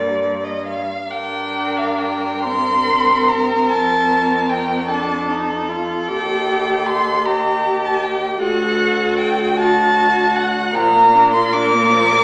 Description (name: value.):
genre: classical, slow romantic movement for string quartet.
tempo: 42-53 BPM (dotted quarters).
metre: 6/8.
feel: rubato.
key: G minor.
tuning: A4 = 435 Hz.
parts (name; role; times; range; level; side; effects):
warm violin; melody; 0.0-12.2 s; D5 to D6; -19 LUFS; equal; none.
warm viola; accompaniment; 0.0-12.2 s; F3 to A4; -25 LUFS; equal; none.
clear cello; bass; 0.0-12.2 s; D2 to Bb2; -28 LUFS; equal; none.
rich violin; second line; 1.1-12.2 s; F#4 to Bb4; -25 LUFS; equal; none.
room: wet recital hall reverb, RT60 1.4 s.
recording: recorded in a church or concert hall, small speaker sound.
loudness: -17 LUFS.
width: mono.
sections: 0.0-1.1 A section; 1.1-12.2 B section.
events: none.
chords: 0.0 Gm; 3.7 Dm/F; 6.1 Eb; 8.4 D; 10.8 Bb.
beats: | 1.11 2.44 | 3.69 4.89 | 6.09 7.26 | 8.43 9.58 | 10.76 11.93.